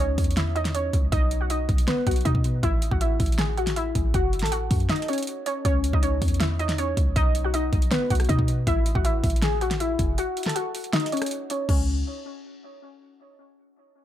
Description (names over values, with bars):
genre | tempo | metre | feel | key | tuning
hip hop, trap | 159 BPM | 4/4 | half-time | C# minor | A4 = 440 Hz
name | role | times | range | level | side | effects
warbly dusty pluck | melody | 0.0-11.9 s | B3 to A5 | -27 LUFS | left 1 dB | chorus, low-pass filter, tape echo
warm 808-style bass | bass | 0.0-12.0 s | F#1 to B2 | -25 LUFS | equal | none
pop drum kit | drums | 0.2-11.8 s | crash cymbal, hi-hat, kick drum, rim click, snare drum | -25 LUFS | equal | none
room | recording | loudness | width
digital ambience | echo-heavy mix | -21 LUFS | side -12 dB against mid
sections
0.0-5.7 A section; 5.7-11.7 B section; 11.7-13.2 C section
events
break 4.9-5.7, 10.2-11.7; filter sweep on synth pluck 5.7-11.7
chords
0.0 C#m; 1.1 B; 2.6 A5; 4.1 F#m; 5.7 C#m; 7.2 B; 8.7 A5; 10.2 F#5; 11.7 N.C.